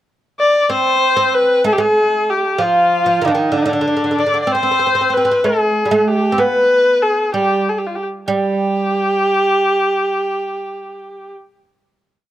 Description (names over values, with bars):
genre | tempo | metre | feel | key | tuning
Persian modal ensemble | 63 BPM (dotted quarters) | 6/8 | straight | G dastgah homayun | A4 = 440 Hz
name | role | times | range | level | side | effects
rich kamancheh | melody | 0.4-11.3 s | D4 to D5 | -14 LUFS | left 1 dB | none
oud | second line | 0.7-11.3 s | D3 to C4 | -19 LUFS | right 4 dB | slapback echo
room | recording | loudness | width
light reverb | recorded outdoors, with no room sound | -13 LUFS | side -13 dB against mid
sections
0.0-0.7 pickup bar; 0.7-8.3 A section; 8.3-12.1 final note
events
none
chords
none